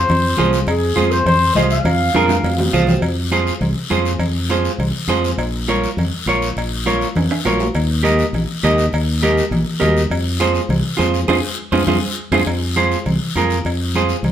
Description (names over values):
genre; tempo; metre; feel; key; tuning
latin, cumbia; 203 BPM; 4/4; straight; F minor; A4 = 442 Hz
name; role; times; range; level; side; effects
breathy clarinet; second line; 0.0-2.7 s; Ab4 to F5; -18 LUFS; left 2 dB; none
fingered electric bass; bass; 0.0-14.3 s; Bb1 to F2; -20 LUFS; equal; none
congas; percussion; 0.1-14.3 s; none; -23 LUFS; left 1 dB; none
cowbell and timbales; percussion; 0.1-14.3 s; none; -26 LUFS; right 1 dB; none
guiro; percussion; 0.1-14.3 s; none; -28 LUFS; left 5 dB; none
semi-hollow electric guitar; accompaniment; 0.4-14.2 s; F4 to F5; -18 LUFS; right 4 dB; none
room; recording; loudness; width
wet studio reverb, RT60 0.8 s; band playing live in one room; -15 LUFS; side -10 dB against mid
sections
0.0-3.0 A section; 3.0-12.5 B section; 12.5-14.3 C section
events
clarinet solo 0.0-3.0; drum fill 2.1-3.0, 7.2-7.8, 11.6-12.5; clean electric guitar fill 2.6-3.0; band accent 11.3-12.5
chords
0.0 Fm; 5.4 Bbm; 7.8 Eb; 10.1 Fm